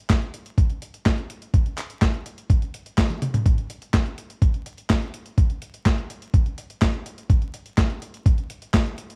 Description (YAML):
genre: italo disco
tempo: 125 BPM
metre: 4/4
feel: straight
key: none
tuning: none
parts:
  - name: dusty soul sampler-style drum kit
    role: drums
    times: 0.1-9.2 s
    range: handclaps, hi-hat, snare drum, toms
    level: -28 LUFS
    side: equal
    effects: overdrive, studio reverb
  - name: electronic kick drum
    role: drums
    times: 0.1-8.8 s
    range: none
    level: -22 LUFS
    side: equal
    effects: overdrive, studio reverb
room: little or no reverb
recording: dry, close 1970s-style studio recording, vinyl crackle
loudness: -24 LUFS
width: mono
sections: 0.0-3.5 A section; 3.5-9.2 B section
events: band accent 3.0; drum fill 3.1-3.5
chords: none